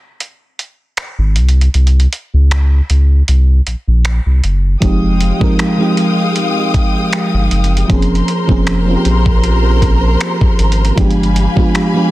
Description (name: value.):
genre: contemporary R&B.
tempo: 78 BPM.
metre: 4/4.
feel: swing 54% on 16ths.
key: F minor.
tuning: A4 = 440 Hz.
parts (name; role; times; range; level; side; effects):
dusty soul sampler-style drum kit; drums; 0.2-11.9 s; finger snaps, hi-hat, kick drum; -16 LUFS; equal; soft clipping on snare.
saturated sub bass; bass; 1.2-11.5 s; F1 to Db2; -11 LUFS; equal; none.
mellow FM electric piano; accompaniment; 4.8-12.1 s; F3 to Bb4; -15 LUFS; right 1 dB; chorus.
warm studio string section; sustained chords; 4.8-12.1 s; Ab3 to Eb6; -20 LUFS; left 1 dB; none.
room: digital ambience.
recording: dense, heavily limited modern master.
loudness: -10 LUFS.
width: side -17 dB against mid.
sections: 0.0-12.1 A section.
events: break 0.0-4.8.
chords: 0.0 N.C.; 1.4 Gb (rootless); 4.8 Fm9; 7.9 Bbm9/F; 11.0 G7b9.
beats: 0.20 0.97 | 1.74 2.51 3.28 4.05 | 4.82 5.59 6.36 7.13 | 7.90 8.67 9.44 10.20 | 10.97 11.74.